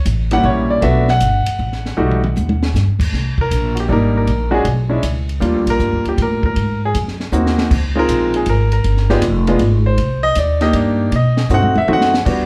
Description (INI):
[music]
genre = jazz piano trio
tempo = 157 BPM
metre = 3/4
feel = swing 66% on 8ths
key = C minor from 3.1 s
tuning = A4 = 440 Hz
[part]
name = clear grand piano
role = melody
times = 0.0-12.5 s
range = G3 to F#5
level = -19 LUFS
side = equal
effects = none
[part]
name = upright bass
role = bass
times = 0.0-12.5 s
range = F1 to B2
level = -19 LUFS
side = equal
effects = none
[part]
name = compact cocktail drum kit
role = drums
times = 0.1-12.4 s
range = crash cymbal, hi-hat, kick drum, ride cymbal, snare drum, toms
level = -24 LUFS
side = equal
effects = none
[sound]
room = wet club reverb, RT60 0.6 s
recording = heard from further back in the room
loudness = -16 LUFS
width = mono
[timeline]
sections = 0.0-3.1 A section; 3.1-12.3 B section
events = drum fill 2.0-2.7, 7.3-7.7, 11.5-12.3; grand piano solo 3.1-12.5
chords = 0.0 A7b9; 0.8 B7(no3); 2.0 B7b13; 2.7 G5; 3.1 Cm7; 4.3 Bb7#9; 5.4 Ebmaj7; 6.6 Ab9; 7.7 Dbmaj7; 8.8 G7b9; 10.0 Cm7; 11.1 B7b9